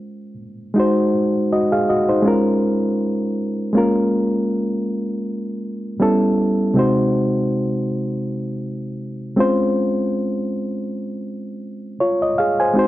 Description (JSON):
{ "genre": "soul", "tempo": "80 BPM", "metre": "4/4", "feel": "swing 54% on 16ths", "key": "unclear", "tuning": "A4 = 440 Hz", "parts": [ { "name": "reed electric piano", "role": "solo", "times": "0.0-12.9 s", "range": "C3 to Ab5", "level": "-18 LUFS", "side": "equal", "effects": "none" } ], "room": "light reverb", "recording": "dark, warm production", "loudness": "-17 LUFS", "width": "side -15 dB against mid", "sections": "0.0-3.8 A section; 3.8-12.9 A section", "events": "none", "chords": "0.0 Dbmaj7; 0.8 Ab7; 2.3 Bbm7; 6.0 A9; 6.8 Ab7/C; 9.4 Dbmaj7", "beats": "0.01 | 0.76 1.51 2.26 3.01 | 3.76 4.51 5.26 6.01 | 6.75 7.50 8.25 9.00 | 9.75 10.50 11.25 12.00 | 12.75" }